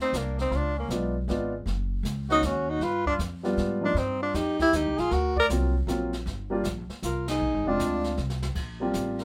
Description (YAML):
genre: jazz, small-group swing and bop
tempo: 157 BPM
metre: 3/4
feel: swing 66% on 8ths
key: unclear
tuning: A4 = 440 Hz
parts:
  - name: breathy tenor saxophone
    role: melody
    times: 0.0-8.2 s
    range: Bb3 to A#4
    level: -28 LUFS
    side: equal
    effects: none
  - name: growling trumpet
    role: second line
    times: 0.0-9.2 s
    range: Db4 to D5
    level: -36 LUFS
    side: equal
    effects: none
  - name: upright bass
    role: bass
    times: 0.0-9.2 s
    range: F1 to Ab2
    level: -33 LUFS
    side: equal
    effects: none
  - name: jazz brush drum kit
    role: drums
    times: 0.0-9.2 s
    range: brushed snare drum, crash cymbal, hi-hat, kick drum, ride cymbal, snare drum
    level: -40 LUFS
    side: equal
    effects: none
  - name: warm baby grand piano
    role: accompaniment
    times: 0.9-9.2 s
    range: F3 to F4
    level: -31 LUFS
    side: equal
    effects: none
room: moderate small room reverb, RT60 0.5 s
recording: none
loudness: -27 LUFS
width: mono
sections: 0.0-8.6 A section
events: band accent 7.2; drum fill 8.2-8.6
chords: 0.0 Cm9; 0.5 Db7b9; 1.7 Gb5; 2.8 G7; 4.0 Cm7; 5.1 D7alt; 6.3 Gm; 7.4 Bb9 (rootless); 8.6 Bb6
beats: 0.14 | 0.52 0.90 1.28 | 1.67 2.05 2.43 | 2.82 3.20 3.58 | 3.96 4.35 4.73 | 5.11 5.50 5.88 | 6.26 6.64 7.03 | 7.41 7.79 8.18 | 8.56 8.94